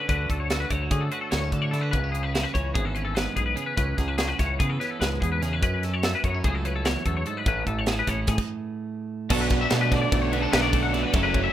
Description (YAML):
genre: math rock and midwest emo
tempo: 293 BPM (eighths)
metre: 9/8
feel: straight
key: unclear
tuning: A4 = 436 Hz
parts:
  - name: twelve-string electric guitar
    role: accompaniment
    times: 0.0-11.5 s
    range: E2 to A4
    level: -31 LUFS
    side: right 6 dB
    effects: spring reverb
  - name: twangy electric guitar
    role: arpeggios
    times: 0.0-11.5 s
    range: G#4 to F#5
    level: -28 LUFS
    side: left 6 dB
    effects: ensemble chorus, slapback echo
  - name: growling fingered electric bass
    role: bass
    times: 0.1-11.5 s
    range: F#1 to D3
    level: -28 LUFS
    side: equal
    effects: overdrive
  - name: crisp fusion drum kit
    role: drums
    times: 0.1-11.4 s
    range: crash cymbal, hi-hat, kick drum, ride cymbal, snare drum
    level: -27 LUFS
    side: equal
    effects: none
  - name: overdriven electric guitar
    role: riff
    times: 9.3-11.5 s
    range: B2 to F#4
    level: -27 LUFS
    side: right 2 dB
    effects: none
room: light reverb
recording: rough home demo mix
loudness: -23 LUFS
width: side -12 dB against mid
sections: 0.0-9.3 A section; 9.3-11.5 B section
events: stop 8.4-9.3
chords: 0.0 Dmaj7; 1.9 C#m7; 5.6 F#m7; 7.5 Amaj7; 9.3 Bm7